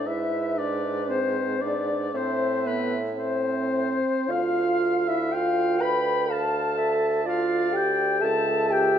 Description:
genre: classical, slow romantic movement for wind quintet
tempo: 51-63 BPM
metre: 4/4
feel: rubato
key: A minor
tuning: A4 = 441 Hz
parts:
  - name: hollow concert flute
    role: melody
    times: 0.0-9.0 s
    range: B4 to B5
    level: -30 LUFS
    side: left 8 dB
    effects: none
  - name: warm oboe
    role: second line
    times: 0.0-9.0 s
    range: B4 to B5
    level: -30 LUFS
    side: left 5 dB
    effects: none
  - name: dark clarinet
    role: accompaniment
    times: 0.0-9.0 s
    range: B4 to G5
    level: -32 LUFS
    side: right 9 dB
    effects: none
  - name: mellow French horn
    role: accompaniment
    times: 0.0-9.0 s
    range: B3 to B4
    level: -26 LUFS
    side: right 1 dB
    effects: none
  - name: warm bassoon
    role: bass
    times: 0.0-9.0 s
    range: C#2 to A2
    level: -30 LUFS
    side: right 2 dB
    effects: none
room: wet recital hall reverb, RT60 1.7 s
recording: nothing above 8.0 kHz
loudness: -22 LUFS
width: side -9 dB against mid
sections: 0.0-9.0 A section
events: none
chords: 0.1 E7b13/G#; 2.2 Am; 4.3 Dm; 8.2 A7/C#

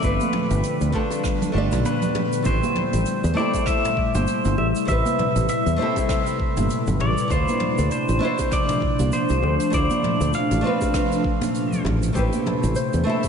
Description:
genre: sunset chillout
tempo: 99 BPM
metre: 4/4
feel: swing 58% on 16ths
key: A minor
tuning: A4 = 440 Hz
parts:
  - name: pedal steel guitar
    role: melody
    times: 0.0-11.8 s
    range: B4 to F5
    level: -26 LUFS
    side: left 1 dB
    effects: analog delay
  - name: flamenco guitar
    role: accompaniment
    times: 0.0-13.3 s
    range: A3 to D5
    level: -27 LUFS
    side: moving between left 2 dB and right 4 dB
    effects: auto-pan, ping-pong delay
  - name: ethereal airy pad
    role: sustained chords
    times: 0.0-13.3 s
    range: C3 to B4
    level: -27 LUFS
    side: equal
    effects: ensemble chorus, built-in reverb, vintage 12-bit sampler grit
  - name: fingered electric bass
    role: bass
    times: 0.0-13.0 s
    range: G1 to E2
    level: -22 LUFS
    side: equal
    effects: none
  - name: electronic kick drum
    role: drums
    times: 0.0-13.3 s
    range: none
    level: -26 LUFS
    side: equal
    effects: none
  - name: jazz brush drum kit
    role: drums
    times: 0.0-13.3 s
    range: hi-hat, rim click, shaker, toms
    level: -32 LUFS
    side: left 5 dB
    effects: none
  - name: bongos and congas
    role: percussion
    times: 0.2-13.3 s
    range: none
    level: -31 LUFS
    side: right 4 dB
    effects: none
  - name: concert harp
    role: arpeggios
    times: 12.2-13.3 s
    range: G4 to E5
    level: -28 LUFS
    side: left 3 dB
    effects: ping-pong delay
room: wet lush hall reverb, RT60 3.1 s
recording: dreamy mix soaked in reverb, nothing above 10.7 kHz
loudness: -19 LUFS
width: side -6 dB against mid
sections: 0.0-2.5 A section; 2.5-13.3 A section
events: none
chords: 0.0 G7; 2.5 Am7; 7.3 Dm7; 12.2 Am7

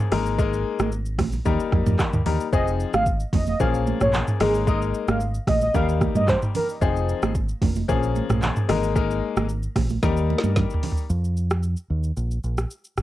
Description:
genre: afrobeats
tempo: 112 BPM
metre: 4/4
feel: straight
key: unclear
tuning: A4 = 440 Hz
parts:
  - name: clear grand piano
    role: accompaniment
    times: 0.0-11.0 s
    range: F3 to Bb4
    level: -26 LUFS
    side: left 7 dB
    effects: cassette tape
  - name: deep dub fingered electric bass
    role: bass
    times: 0.1-13.0 s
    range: F1 to G2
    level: -24 LUFS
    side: equal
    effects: none
  - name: afro-pop drum kit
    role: drums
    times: 0.1-13.0 s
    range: handclaps, hi-hat, kick drum, rim click, shaker, snare drum, toms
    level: -24 LUFS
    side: equal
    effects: cassette tape
  - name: congas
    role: percussion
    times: 0.1-11.0 s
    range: none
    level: -29 LUFS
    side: right 7 dB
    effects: none
  - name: warm velvety synth lead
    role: melody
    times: 2.5-6.7 s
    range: Ab4 to F5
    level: -25 LUFS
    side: right 1 dB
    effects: chorus, cassette tape
room: little or no reverb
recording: home recording on cassette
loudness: -20 LUFS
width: side -14 dB against mid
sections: 0.0-11.1 A section; 11.1-13.0 B section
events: drum fill 10.0-11.1; break 11.1-13.0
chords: 0.1 Absus2; 1.5 Eb; 2.5 Fm7; 3.6 Bbm7; 4.4 Absus2; 5.7 Eb; 6.8 Fm7; 7.9 Bbm7; 8.7 Absus2; 10.0 Eb; 11.1 Ebsus2; 12.2 N.C.

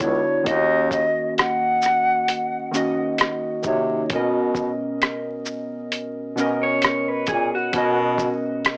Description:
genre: lo-fi hip hop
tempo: 66 BPM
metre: 4/4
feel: swing 56% on 16ths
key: B major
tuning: A4 = 440 Hz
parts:
  - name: concert flute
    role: melody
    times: 0.0-2.7 s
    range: C#5 to F#5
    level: -20 LUFS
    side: equal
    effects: low-pass filter, tape echo
  - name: warm analog keys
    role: accompaniment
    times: 0.0-8.8 s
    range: B2 to D#5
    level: -24 LUFS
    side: equal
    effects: chorus, cassette tape, low-pass filter
  - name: mellow bass clarinet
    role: bass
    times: 0.0-8.3 s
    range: C#2 to C3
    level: -22 LUFS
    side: equal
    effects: none
  - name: lo-fi sampler-style drum kit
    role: drums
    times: 0.0-8.8 s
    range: hi-hat, kick drum, rim click, shaker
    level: -22 LUFS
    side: equal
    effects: vintage 12-bit sampler grit
  - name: electric guitar through a small old amp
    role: second line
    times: 6.6-8.0 s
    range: F#4 to C#5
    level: -24 LUFS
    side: equal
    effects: low-pass filter, tape echo
room: moderate studio reverb, RT60 0.6 s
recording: dry, gritty hardware recording, transformer saturation, vinyl crackle, small speaker sound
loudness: -19 LUFS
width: side -33 dB against mid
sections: 0.0-8.8 A section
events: none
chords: 0.5 D#m7; 4.1 Bmaj7

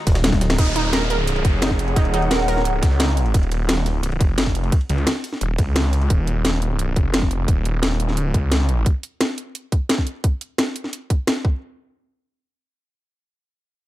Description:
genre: dark technical drum and bass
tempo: 174 BPM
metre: 4/4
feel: straight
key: Eb minor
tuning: A4 = 440 Hz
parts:
  - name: muted studio string section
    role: sustained chords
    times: 0.0-0.6 s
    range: Eb3 to Eb4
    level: -35 LUFS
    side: left 1 dB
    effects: none
  - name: pulsing pluck wobble bass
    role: bass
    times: 0.1-0.6 s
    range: Eb1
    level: -20 LUFS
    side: equal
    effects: chorus
  - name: drum and bass drum kit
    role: drums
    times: 0.1-11.3 s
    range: crash cymbal, hi-hat, snare drum, toms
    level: -22 LUFS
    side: equal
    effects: overdrive
  - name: electronic kick drum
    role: drums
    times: 0.1-11.5 s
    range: none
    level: -18 LUFS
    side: equal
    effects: overdrive
  - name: jungle sampler-style drum kit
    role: drums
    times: 0.1-6.1 s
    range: hi-hat, ride cymbal, snare drum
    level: -35 LUFS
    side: right 1 dB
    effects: none
  - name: wide unison pluck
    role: arpeggios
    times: 0.6-3.2 s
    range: Eb4 to Bb4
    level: -26 LUFS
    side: right 4 dB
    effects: sidechain pumping, dub echo
  - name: snarling distorted saw bass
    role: bass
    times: 0.6-8.8 s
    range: Eb1 to Db2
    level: -20 LUFS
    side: equal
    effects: distortion, overdrive, sidechain pumping
  - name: downlifter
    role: sound effects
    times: 0.6-3.3 s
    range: none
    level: -29 LUFS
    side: equal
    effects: none
  - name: warbly tape-like pad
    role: texture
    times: 1.1-3.3 s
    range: Ab4 to Gb5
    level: -27 LUFS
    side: equal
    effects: chorus, built-in reverb, sidechain pumping
room: light reverb, digital ambience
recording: dark, warm production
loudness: -18 LUFS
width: side -15 dB against mid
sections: 0.6-11.6 A section; 11.6-13.9 B section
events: drum fill 0.2-0.6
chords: 0.0 N.C.; 0.6 Ebmadd9; 11.4 N.C.

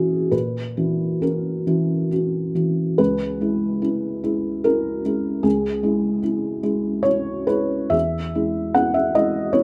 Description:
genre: neoclassical minimalist piano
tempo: 66-78 BPM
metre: 3/4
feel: rubato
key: unclear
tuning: A4 = 439 Hz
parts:
  - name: felt-muted upright piano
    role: solo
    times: 0.0-9.6 s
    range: C#2 to F#5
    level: -22 LUFS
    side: equal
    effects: none
room: moderate studio reverb, RT60 0.5 s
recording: none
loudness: -22 LUFS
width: mono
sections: 0.0-3.0 A section; 3.0-9.6 A section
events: none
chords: 0.0 F#7/A#; 3.0 C#m7; 7.9 E

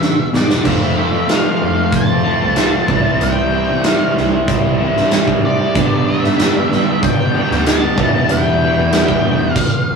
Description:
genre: classic rock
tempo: 94 BPM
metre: 4/4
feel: straight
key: unclear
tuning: A4 = 440 Hz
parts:
  - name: octave-fuzz lead guitar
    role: melody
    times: 0.0-10.0 s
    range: D5 to A5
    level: -21 LUFS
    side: left 2 dB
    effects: distortion
  - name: overdriven electric guitar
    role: riff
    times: 0.0-9.6 s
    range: E2 to F4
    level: -18 LUFS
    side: right 3 dB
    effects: none
  - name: overdriven semi-hollow guitar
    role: riff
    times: 0.0-9.6 s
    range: E2 to G4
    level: -20 LUFS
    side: left 4 dB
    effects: none
  - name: muted double bass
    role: bass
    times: 0.0-9.5 s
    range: E1 to F3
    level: -23 LUFS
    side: right 1 dB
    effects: none
  - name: big rock drum kit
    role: drums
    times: 0.0-9.7 s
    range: crash cymbal, hi-hat, kick drum, snare drum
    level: -17 LUFS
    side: right 2 dB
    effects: none
room: moderate studio reverb, RT60 0.5 s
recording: rough rehearsal-room recording, tube saturation, studio reverb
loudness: -12 LUFS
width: side -5 dB against mid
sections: 0.7-10.0 A section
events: drum fill 0.0-0.7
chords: 0.0 E; 0.7 F; 2.9 C; 5.8 G; 8.0 Em

